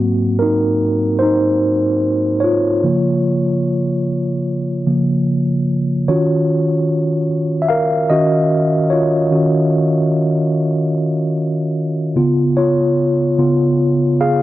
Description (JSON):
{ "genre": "R&B", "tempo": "74 BPM", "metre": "4/4", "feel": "swing 56% on 16ths", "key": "Eb dorian", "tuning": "A4 = 440 Hz", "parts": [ { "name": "mellow tine electric piano", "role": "solo", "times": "0.0-14.4 s", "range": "Ab2 to F5", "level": "-14 LUFS", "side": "equal", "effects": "medium stereo tremolo" } ], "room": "light reverb", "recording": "dry, close 1970s-style studio recording", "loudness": "-14 LUFS", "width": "side -15 dB against mid", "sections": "0.0-6.1 A section; 6.1-14.4 B section", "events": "tine electric piano solo 0.0-6.1, 6.1-14.4", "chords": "0.0 Ab9; 2.8 Db6; 6.1 Ebm9; 12.2 Db7", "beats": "0.41 1.22 2.03 | 2.84 3.65 4.46 5.27 | 6.08 6.89 7.71 8.52 | 9.33 10.14 10.95 11.76 | 12.57 13.38 14.19" }